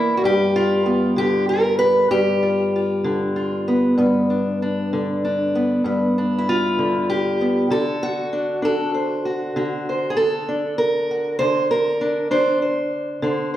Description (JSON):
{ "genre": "acoustic country blues, solo or duo", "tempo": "65 BPM (dotted quarters)", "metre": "12/8", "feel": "straight", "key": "G mixolydian", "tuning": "A4 = 440 Hz", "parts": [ { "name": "fingerpicked steel-string acoustic guitar", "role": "solo", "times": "0.0-13.6 s", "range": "G2 to C5", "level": "-18 LUFS", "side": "equal", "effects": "none" } ], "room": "wet recital hall reverb, RT60 1.4 s", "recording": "recorded in a church or concert hall", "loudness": "-18 LUFS", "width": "side -12 dB against mid", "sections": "0.0-13.6 A section", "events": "none", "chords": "0.2 G7; 7.7 D7", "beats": "| 0.25 1.18 2.12 3.05 | 3.98 4.91 5.84 6.77 | 7.70 8.62 9.55 10.47 | 11.39 12.31 13.23" }